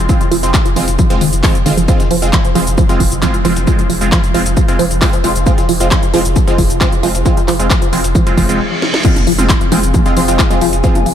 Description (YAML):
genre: driving peak-time techno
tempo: 134 BPM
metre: 4/4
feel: straight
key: F minor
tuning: A4 = 438 Hz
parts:
  - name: saturated sub bass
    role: bass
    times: 0.0-11.1 s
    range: F1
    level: -20 LUFS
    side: equal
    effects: overdrive, sidechain pumping, low-pass filter
  - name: tight sequenced synth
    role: riff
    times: 0.1-11.1 s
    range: Eb3 to F3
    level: -17 LUFS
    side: right 1 dB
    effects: chorus, tube saturation, sidechain pumping, ping-pong delay
  - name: supersaw stab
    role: stabs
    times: 0.1-11.0 s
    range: Ab3 to F4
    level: -18 LUFS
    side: right 1 dB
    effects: phaser, sidechain pumping, ping-pong delay
  - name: dusty soul sampler-style drum kit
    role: drums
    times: 0.1-11.1 s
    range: hi-hat, snare drum, tambourine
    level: -30 LUFS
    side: left 3 dB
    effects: none
  - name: electronic kick drum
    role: drums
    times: 0.1-10.9 s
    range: none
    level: -14 LUFS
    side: equal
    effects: none
  - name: techno drum kit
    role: drums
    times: 0.1-11.1 s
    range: crash cymbal, handclaps, hi-hat, shaker, snare drum, toms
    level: -20 LUFS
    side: equal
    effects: sidechain pumping on hats, sidechain pumping on perc, sidechain pumping on cymbals, sidechain pumping on toms
  - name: reverse cymbal and impact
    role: sound effects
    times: 8.3-10.8 s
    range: none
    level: -23 LUFS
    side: equal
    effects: none
  - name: warbly tape-like pad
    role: texture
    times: 9.7-11.1 s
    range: C4 to Ab5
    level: -21 LUFS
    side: left 2 dB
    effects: chorus, built-in reverb, sidechain pumping
room: moderate cathedral reverb, RT60 5.2 s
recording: dreamy mix soaked in reverb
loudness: -10 LUFS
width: side -10 dB against mid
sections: 0.0-9.0 A section; 9.0-11.1 B section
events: reverse cymbal 8.3-9.0; stop 8.6-9.0; drum fill 8.8; drop 9.0-11.1; impact 9.0-10.8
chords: 0.0 Fm